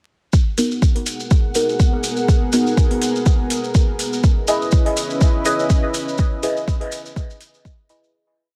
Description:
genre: dub techno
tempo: 123 BPM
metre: 4/4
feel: swing 56% on 16ths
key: G# minor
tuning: A4 = 440 Hz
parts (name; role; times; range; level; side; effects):
- dark analog pad; sustained chords; 1.1-8.1 s; B3 to F#5; -27 LUFS; equal; chorus, sidechain pumping
- electronic kick drum; drums; 0.3-7.8 s; none; -18 LUFS; equal; overdrive
- maracas; percussion; 0.3-8.1 s; none; -31 LUFS; equal; none
- deep mellow chord stab; stabs; 0.6-8.1 s; B3 to D#5; -24 LUFS; equal; chorus, phaser, sidechain pumping, dub echo
- electronic hi-hat; drums; 0.6-8.0 s; none; -30 LUFS; equal; overdrive
room: light reverb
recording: vinyl crackle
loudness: -18 LUFS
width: mono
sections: 0.3-8.1 groove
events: fade-out 5.5-8.1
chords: 0.3 G#m9; 4.2 C#m9

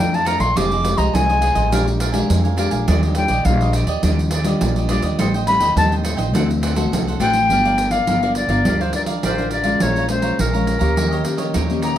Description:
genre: samba and choro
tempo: 104 BPM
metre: 4/4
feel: straight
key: G minor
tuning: A4 = 440 Hz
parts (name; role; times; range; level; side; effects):
- reedy silver concert flute; melody; 0.0-12.0 s; Bb4 to D6; -19 LUFS; left 2 dB; none
- cavaquinho; accompaniment; 0.0-12.0 s; D4 to Bb5; -27 LUFS; right 6 dB; none
- nylon-string guitar; accompaniment; 0.0-12.0 s; F2 to Bb4; -23 LUFS; left 4 dB; none
- upright bass; bass; 0.0-12.0 s; F1 to F2; -21 LUFS; right 1 dB; none
- pandeiro; percussion; 0.1-12.0 s; none; -23 LUFS; right 2 dB; none
room: light reverb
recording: none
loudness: -16 LUFS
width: side -11 dB against mid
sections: 0.0-7.5 A section; 7.5-12.0 B section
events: flute solo 0.0-7.5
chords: 0.0 Bbmaj7; 0.6 Fm9; 1.7 Bb6; 2.9 Ebmaj9; 5.2 Am7b5; 6.3 D7; 7.5 Gm7; 9.8 Bbm7; 11.0 Eb7

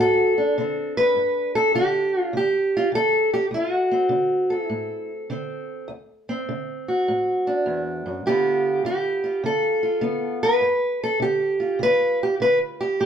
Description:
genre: acoustic country blues, solo or duo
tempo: 102 BPM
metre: 4/4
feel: swing 66% on 8ths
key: unclear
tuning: A4 = 437 Hz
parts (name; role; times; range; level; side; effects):
- fingerpicked steel-string acoustic guitar; solo; 0.0-13.1 s; D2 to B4; -20 LUFS; equal; none
room: moderate studio reverb, RT60 0.7 s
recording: band playing live in one room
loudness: -20 LUFS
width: side -8 dB against mid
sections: 0.0-13.1 A section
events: none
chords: 0.0 D7; 1.2 G5; 3.5 D7; 8.3 G7

